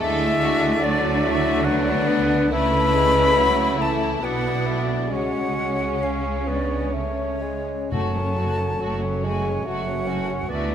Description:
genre	classical, slow romantic movement for symphony orchestra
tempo	59-74 BPM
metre	3/4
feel	rubato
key	F# minor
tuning	A4 = 440 Hz
part	warm studio violin section	melody	0.0-10.7 s	C#4 to A4	-30 LUFS	left 3 dB	none
part	bright silver concert flute	second line	0.0-10.7 s	C#5 to B5	-26 LUFS	left 3 dB	none
part	clear oboe	second line	0.0-10.7 s	C#5 to F#5	-32 LUFS	right 1 dB	none
part	warm symphonic violin section	second line	0.0-10.7 s	A3 to E4	-33 LUFS	left 3 dB	none
part	warm bassoon	accompaniment	0.0-10.7 s	E3 to C#4	-30 LUFS	right 2 dB	none
part	warm studio viola section	accompaniment	0.0-10.7 s	F#3 to B3	-32 LUFS	right 1 dB	none
part	dark French horn section	sustained chords	0.0-10.7 s	C#4 to B4	-27 LUFS	left 4 dB	none
part	dark studio double bass section	bass	0.0-10.7 s	F#1 to D2	-28 LUFS	right 3 dB	none
part	warm studio cello section	bass	0.0-10.7 s	F#2 to D3	-28 LUFS	right 4 dB	none
part	timpani	percussion	7.9-9.2 s	F#2	-30 LUFS	left 2 dB	none
room	moderate concert hall reverb, RT60 2.4 s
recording	none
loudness	-19 LUFS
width	side -9 dB against mid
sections	0.0-10.7 A section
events	none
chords	0.0 D; 2.5 A/C#; 4.2 Bm; 5.1 C#5; 7.9 F#m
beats	0.80 1.63 | 2.52 3.38 4.23 | 5.11 6.03 6.93 | 7.91 8.81 9.67 | 10.50

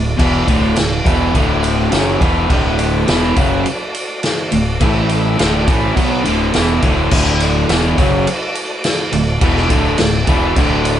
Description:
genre	classic rock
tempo	104 BPM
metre	4/4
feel	straight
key	D major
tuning	A4 = 440 Hz
part	tonewheel organ	sustained chords	0.0-11.0 s	A3 to E5	-27 LUFS	equal	none
part	crunchy overdriven guitar	riff	0.0-11.0 s	D2 to B3	-20 LUFS	equal	none
part	distorted electric guitar	riff	0.0-11.0 s	D2 to B3	-20 LUFS	right 5 dB	distortion
part	overdriven electric guitar	riff	0.0-11.0 s	D2 to B3	-20 LUFS	left 5 dB	none
part	growling fingered electric bass	bass	0.0-11.0 s	D1 to B1	-20 LUFS	equal	overdrive
part	vintage drum kit	drums	0.2-11.0 s	crash cymbal, kick drum, ride cymbal, snare drum	-17 LUFS	equal	none
part	tambourine	percussion	0.5-11.0 s	none	-36 LUFS	right 6 dB	none
room	moderate stone room reverb, RT60 0.9 s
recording	band playing live in one room, nothing above 10.6 kHz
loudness	-12 LUFS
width	side -10 dB against mid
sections	0.0-7.1 A section; 7.1-11.0 A section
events	none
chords	0.0 D; 4.8 A5; 5.4 D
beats	| 0.19 0.77 1.35 1.93 | 2.50 3.08 3.65 4.23 | 4.81 5.38 5.96 6.54 | 7.11 7.69 8.27 8.84 | 9.42 9.99 10.57

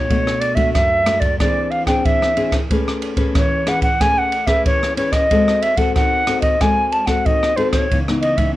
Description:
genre	samba and choro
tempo	92 BPM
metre	4/4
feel	straight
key	unclear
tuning	A4 = 439 Hz
part	mellow hollow silver concert flute	melody	0.0-8.5 s	B#4 to A5	-18 LUFS	equal	none
part	nylon-string guitar	accompaniment	0.0-8.6 s	F#2 to B4	-21 LUFS	left 3 dB	none
part	open jazz drum kit	drums	0.1-8.5 s	kick drum, ride cymbal, rim click	-20 LUFS	right 1 dB	none
room	light reverb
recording	worn, warbling old tape, cassette tape, warbly pitch drift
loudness	-15 LUFS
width	side -15 dB against mid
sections	0.0-8.6 A section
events	none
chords	0.1 Bm7; 1.4 Eaug7; 2.7 Amaj9; 5.3 G#7b9; 7.9 C#m9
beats	| 0.10 0.75 1.41 2.06 | 2.71 3.36 4.01 4.66 | 5.31 5.96 6.61 7.26 | 7.92

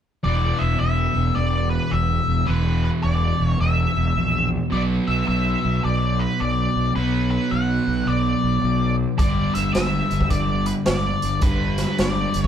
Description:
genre	blues rock power trio and southern rock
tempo	107 BPM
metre	4/4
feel	swing 64% on 8ths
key	unclear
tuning	A4 = 439 Hz
part	octave-fuzz lead guitar	melody	0.2-12.5 s	B4 to F#5	-25 LUFS	left 2 dB	distortion
part	crunchy overdriven guitar	riff	0.2-12.5 s	E2 to B3	-23 LUFS	equal	none
part	fuzz fingered electric bass	bass	0.3-12.5 s	E1 to B1	-23 LUFS	equal	overdrive
part	raw garage drum kit	drums	9.2-12.5 s	hi-hat, kick drum, snare drum	-23 LUFS	equal	none
room	moderate stone room reverb, RT60 1.1 s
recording	band playing live in one room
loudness	-18 LUFS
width	side -9 dB against mid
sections	0.2-12.5 A section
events	none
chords	0.2 E5; 4.7 Bm; 9.2 G5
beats	| 0.25 0.81 1.37 1.93 | 2.48 3.04 3.60 4.16 | 4.72 5.28 5.84 6.40 | 6.96 7.52 8.08 8.64 | 9.20 9.76 10.31 10.87 | 11.43 11.99

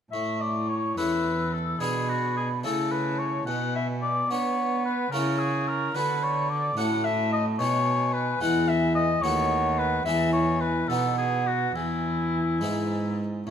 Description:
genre	classical, baroque-style sonata movement with continuo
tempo	72 BPM (dotted quarters)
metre	6/8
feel	straight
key	A major, E major from 6.8 s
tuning	A4 = 440 Hz
part	warm oboe	melody	0.1-13.5 s	C#4 to F#5	-28 LUFS	left 4 dB	none
part	mellow hollow baroque flute	second line	0.1-13.5 s	F#5 to E6	-31 LUFS	right 7 dB	none
part	harpsichord	accompaniment	0.1-13.5 s	D#2 to A4	-30 LUFS	left 2 dB	none
part	warm cello	bass	0.1-13.5 s	D#2 to B3	-29 LUFS	right 2 dB	none
room	moderate recital hall reverb, RT60 1.7 s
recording	close, detailed microphones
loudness	-23 LUFS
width	side -8 dB against mid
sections	0.1-13.5 A section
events	none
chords	0.1 A; 1.8 G#dim/B; 2.6 A/C#; 3.5 Bm; 5.1 A#dim/C#; 6.0 Bm/D; 6.8 F#m/A; 7.6 B; 8.4 E; 9.2 B7/D#; 10.1 E; 10.9 B; 11.8 E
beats	| 0.14 0.98 | 1.81 2.64 | 3.48 4.30 | 5.12 5.95 | 6.77 7.59 | 8.41 9.23 | 10.06 10.90 | 11.76 12.62 | 13.47

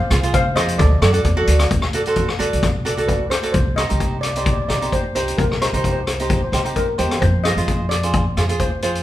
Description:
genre	calypso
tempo	131 BPM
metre	4/4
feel	swing 53% on 16ths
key	C minor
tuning	A4 = 439 Hz
part	steel pan	melody	0.0-9.0 s	A4 to F5	-23 LUFS	left 1 dB	none
part	cavaquinho	accompaniment	0.1-9.0 s	Eb4 to D5	-23 LUFS	right 2 dB	none
part	upright bass	bass	0.1-9.0 s	Bb1 to F#2	-20 LUFS	equal	none
part	street-band drum kit	drums	0.1-9.0 s	hi-hat, kick drum, rim click	-21 LUFS	left 2 dB	none
room	moderate large studio reverb, RT60 1.3 s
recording	band playing live in one room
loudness	-16 LUFS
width	side -14 dB against mid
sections	0.0-1.7 A section; 1.7-3.5 B section; 3.5-9.0 C section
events	none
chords	0.0 Fm; 0.8 D; 1.7 D7; 3.5 Cm; 7.2 Fm7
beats	0.34 0.80 1.25 | 1.71 2.17 2.63 3.08 | 3.54 4.00 4.46 4.92 | 5.38 5.84 6.30 6.76 | 7.22 7.68 8.14 8.60

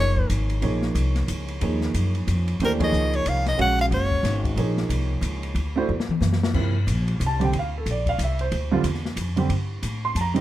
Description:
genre	modal jazz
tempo	183 BPM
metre	3/4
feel	swing 61% on 8ths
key	Eb dorian, G dorian from 6.5 s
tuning	A4 = 440 Hz
part	breathy soprano saxophone	melody	0.0-0.3, 2.6-4.4 s	Bb4 to Gb5	-24 LUFS	equal	none
part	warm upright piano	accompaniment	0.0-10.4 s	C3 to C6	-26 LUFS	right 4 dB	none
part	upright bass	bass	0.0-10.4 s	Gb1 to A2	-24 LUFS	equal	none
part	open jazz drum kit	drums	0.2-10.4 s	crash cymbal, hi-hat, kick drum, ride cymbal, snare drum, toms	-30 LUFS	left 2 dB	none
room	light reverb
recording	none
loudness	-21 LUFS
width	side -14 dB against mid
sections	0.0-6.5 A section; 6.5-10.4 B section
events	band accent 2.8; drum fill 5.9-6.5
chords	0.0 Ebm11; 5.6 D; 6.5 Gm11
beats	0.30 | 0.63 0.96 1.29 | 1.62 1.95 2.28 | 2.60 2.93 3.26 | 3.59 3.92 4.25 | 4.58 4.90 5.23 | 5.56 5.89 6.22 | 6.54 6.87 7.20 | 7.53 7.86 8.19 | 8.51 8.84 9.17 | 9.50 9.82 10.15

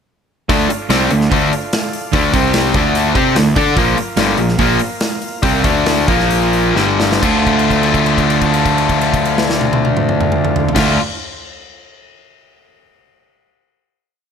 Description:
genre	classic rock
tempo	125-147 BPM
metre	4/4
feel	straight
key	D minor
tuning	A4 = 440 Hz
part	tonewheel organ	sustained chords	0.5-11.0 s	A3 to G5	-28 LUFS	right 3 dB	none
part	crunchy overdriven guitar	riff	0.5-11.0 s	G2 to D5	-18 LUFS	right 12 dB	none
part	distorted electric guitar	riff	0.5-11.0 s	G2 to D5	-16 LUFS	left 9 dB	overdrive
part	fuzz picked electric bass	bass	0.5-11.0 s	G1 to D3	-19 LUFS	equal	overdrive
part	big rock drum kit	drums	0.5-10.9 s	crash cymbal, hi-hat, kick drum, snare drum, toms	-19 LUFS	equal	none
room	light reverb, small room ambience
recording	none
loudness	-12 LUFS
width	side -7 dB against mid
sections	0.5-7.2 riff; 7.2-11.1 final chord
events	slowing down 3.8-7.2; drum fill 6.8-7.2; held note 7.2-10.8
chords	0.5 Dm; 2.3 C5; 2.7 Dm; 3.8 Bb5; 5.6 D5; 6.1 Bb5; 6.8 G5; 7.2 Dm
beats	| 0.49 0.90 1.31 1.72 | 2.13 2.54 2.95 3.35 | 3.76 4.17 4.58 5.00 | 5.42 5.85 6.30 6.75 | 7.22 7.70 8.18 8.66 | 9.13 9.62 10.10 10.57

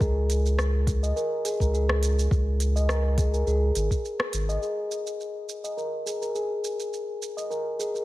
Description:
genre	organic downtempo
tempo	104 BPM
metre	4/4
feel	swing 54% on 16ths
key	unclear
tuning	A4 = 440 Hz
part	steel tongue drum	arpeggios	0.0-8.0 s	G#4 to D#5	-28 LUFS	left 1 dB	low-pass filter, ping-pong delay
part	warm sub bass	bass	0.0-4.6 s	G#1 to C#2	-24 LUFS	equal	none
part	electronic kick drum	drums	0.0-4.0 s	none	-26 LUFS	equal	none
part	organic electronic drum kit	drums	0.0-8.0 s	hi-hat, rim click, shaker	-32 LUFS	right 1 dB	none
room	light reverb, digital ambience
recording	none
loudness	-24 LUFS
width	side -17 dB against mid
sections	0.0-4.6 A section; 4.6-8.0 B section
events	filter sweep on steel tongue drum 4.6-8.0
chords	0.0 C#5; 4.6 G#sus2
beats	| 0.01 0.58 1.16 1.74 | 2.31 2.89 3.47 4.04 | 4.62 5.20 5.78 6.35 | 6.93 7.51

